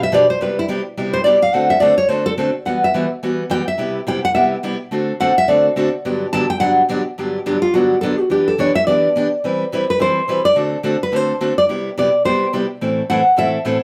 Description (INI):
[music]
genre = country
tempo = 213 BPM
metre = 4/4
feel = swing 62% on 8ths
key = G major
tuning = A4 = 440 Hz
[part]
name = nylon-string guitar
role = melody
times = 0.0-13.6 s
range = E4 to A5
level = -18 LUFS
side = equal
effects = none
[part]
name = picked acoustic archtop guitar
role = accompaniment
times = 0.0-13.8 s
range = G2 to B4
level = -22 LUFS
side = equal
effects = none
[sound]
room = wet studio ambience, RT60 0.4 s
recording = band playing live in one room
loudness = -17 LUFS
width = mono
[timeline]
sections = 0.0-7.2 A section; 7.2-13.8 A section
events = nylon-string guitar solo 0.0-7.2, 7.2-13.8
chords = 0.4 Cmaj7; 1.5 D7; 2.7 Emadd9; 3.8 Cmaj7; 4.9 D7; 6.0 Gmaj7; 8.3 Em7; 9.4 Cmaj7/E; 10.6 D7; 11.7 Cmaj7; 12.8 Am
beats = 0.12 | 0.41 0.69 0.97 1.25 | 1.54 1.82 2.10 2.38 | 2.67 2.95 3.23 3.51 | 3.79 4.08 4.36 4.64 | 4.92 5.20 5.49 5.77 | 6.05 6.33 6.61 6.90 | 7.18 7.46 7.74 8.02 | 8.31 8.59 8.87 9.15 | 9.43 9.71 10.00 10.28 | 10.56 10.84 11.12 11.40 | 11.69 11.97 12.25 12.53 | 12.81 13.09 13.37 13.66